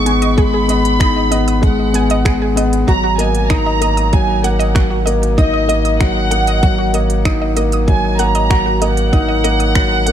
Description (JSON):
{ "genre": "piano and strings electronica", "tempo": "96 BPM", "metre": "4/4", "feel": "straight", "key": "unclear", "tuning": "A4 = 445 Hz", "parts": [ { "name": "dark studio violin section", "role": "melody", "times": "0.0-10.1 s", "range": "D#5 to C#6", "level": "-19 LUFS", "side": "right 2 dB", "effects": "none" }, { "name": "warm concert grand piano", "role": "riff", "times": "0.0-10.1 s", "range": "F#3 to D#4", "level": "-17 LUFS", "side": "left 2 dB", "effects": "digital delay" }, { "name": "round analog bass", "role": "bass", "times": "0.0-10.1 s", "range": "G#1", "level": "-18 LUFS", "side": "equal", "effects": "sidechain pumping" }, { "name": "wide unison pluck", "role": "arpeggios", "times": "0.1-10.1 s", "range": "F#4 to D#6", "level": "-24 LUFS", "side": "right 2 dB", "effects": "sidechain pumping, digital delay" }, { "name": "organic electronic drum kit", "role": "drums", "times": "0.1-10.1 s", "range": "finger snaps, hi-hat", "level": "-25 LUFS", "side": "right 2 dB", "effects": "none" }, { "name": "electronic kick drum", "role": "drums", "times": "0.4-9.9 s", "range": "none", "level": "-15 LUFS", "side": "equal", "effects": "none" } ], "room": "digital ambience", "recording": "none", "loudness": "-12 LUFS", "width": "side -10 dB against mid", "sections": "0.0-10.1 A section", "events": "none", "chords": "0.0 G#m; 2.9 D#m/G#" }